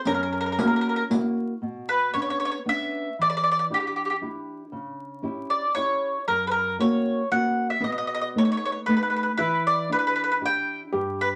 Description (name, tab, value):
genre	italian folk, Italian serenade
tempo	116 BPM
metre	3/4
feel	straight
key	B harmonic minor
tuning	A4 = 440 Hz
part	felt-muted upright piano	second line	0.0-1.3, 7.8-11.4 s	B3 to G4	-34 LUFS	equal	none
part	mandolin	melody	0.1-11.3 s	G4 to G5	-26 LUFS	equal	none
part	nylon-string guitar	accompaniment	0.1-11.4 s	F#2 to G4	-30 LUFS	equal	none
part	riq	percussion	0.1-1.4 s	none	-30 LUFS	equal	none
room	wet studio reverb, RT60 0.5 s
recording	vinyl crackle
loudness	-25 LUFS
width	mono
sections	0.0-1.6 A section; 1.6-11.4 B section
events	none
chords	0.1 F#7; 1.6 Bmadd9; 3.2 Em7; 4.7 C#dim; 6.3 F#; 7.8 B7; 9.4 Em7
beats	| 0.06 0.58 1.10 | 1.63 2.15 2.67 | 3.19 3.70 4.21 | 4.73 5.24 5.75 | 6.26 6.78 7.30 | 7.83 8.35 8.87 | 9.39 9.90 10.41 | 10.93